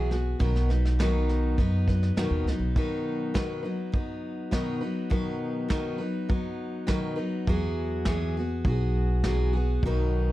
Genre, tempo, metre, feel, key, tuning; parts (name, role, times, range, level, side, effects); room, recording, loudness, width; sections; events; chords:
acoustic folk duo or small band; 102 BPM; 4/4; straight; B major; A4 = 440 Hz
picked steel-string acoustic guitar; accompaniment; 0.0-10.3 s; B2 to B4; -29 LUFS; left 1 dB
upright bass; bass; 0.0-2.7, 7.5-10.3 s; B1 to F#2; -26 LUFS; equal
vintage brush drum kit; drums; 0.1-10.0 s; kick drum, snare drum; -29 LUFS; equal
little or no reverb; dark, warm production; -25 LUFS; side -16 dB against mid
0.0-2.8 A section; 2.8-10.3 B section
0.4 B; 7.5 Eadd9